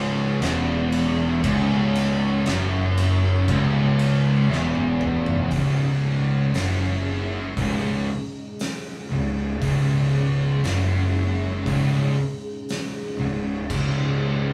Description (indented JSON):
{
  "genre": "stoner and doom metal",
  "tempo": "59 BPM",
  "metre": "4/4",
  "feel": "straight",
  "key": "C# minor",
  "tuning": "A4 = 440 Hz",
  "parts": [
    { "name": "soft string machine", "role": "sustained chords", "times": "0.0-14.5 s", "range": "C#3 to D#4", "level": "-36 LUFS", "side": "equal", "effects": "none" },
    { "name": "distorted electric guitar", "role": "riff", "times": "0.0-5.5 s", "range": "C#2 to F#2", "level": "-27 LUFS", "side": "equal", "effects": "distortion" },
    { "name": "thick fuzz guitar", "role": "riff", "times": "0.0-14.5 s", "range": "C#2 to F#2", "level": "-27 LUFS", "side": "equal", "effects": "distortion" },
    { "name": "thick fuzz guitar", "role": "riff", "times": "0.0-14.5 s", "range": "C#2 to F#2", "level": "-29 LUFS", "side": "equal", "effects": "distortion" },
    { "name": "fuzz fingered electric bass", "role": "bass", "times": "0.0-14.5 s", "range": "C#1 to F#1", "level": "-29 LUFS", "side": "equal", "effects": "overdrive" },
    { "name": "oversized low-tuned drum kit", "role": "drums", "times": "0.4-13.9 s", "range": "crash cymbal, hi-hat, kick drum, ride cymbal, snare drum, toms", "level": "-33 LUFS", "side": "equal", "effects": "none" }
  ],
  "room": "wet studio reverb, RT60 0.8 s",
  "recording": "band playing live in one room, small room ambience",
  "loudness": "-22 LUFS",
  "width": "mono",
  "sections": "0.0-5.5 A section; 5.5-14.5 B section",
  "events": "drum fill 4.5-5.5",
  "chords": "0.0 C#m; 5.5 C#5",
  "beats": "0.42 | 1.44 2.46 3.49 4.51 | 5.53 6.55 7.58 8.60 | 9.62 10.64 11.66 12.68 | 13.70"
}